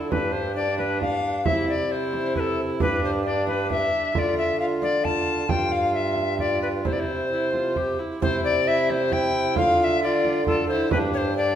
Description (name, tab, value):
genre	classical, renaissance-style consort dance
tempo	134 BPM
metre	3/4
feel	straight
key	unclear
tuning	A4 = 440 Hz
part	bright alto recorder	melody	0.0-11.6 s	A4 to A5	-24 LUFS	left 2 dB	none
part	warm viola	accompaniment	0.0-11.6 s	D4 to G4	-29 LUFS	equal	none
part	mellow bassoon	bass	0.0-11.6 s	G2 to D3	-27 LUFS	right 2 dB	none
part	frame drum	percussion	0.1-11.1 s	none	-30 LUFS	right 3 dB	none
room	wet recital hall reverb, RT60 1.6 s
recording	recorded in a church or concert hall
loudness	-21 LUFS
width	side -10 dB against mid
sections	0.0-8.2 A section; 8.2-11.6 A section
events	none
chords	0.1 G5; 1.5 C; 2.8 G5; 4.1 Dm; 5.5 G7(no3); 6.9 C; 9.6 Dm; 10.9 G5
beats	| 0.11 0.56 1.01 | 1.46 1.91 2.36 | 2.81 3.25 3.70 | 4.15 4.60 5.05 | 5.50 5.94 6.40 | 6.85 7.31 7.77 | 8.22 8.67 9.13 | 9.58 10.03 10.48 | 10.92 11.37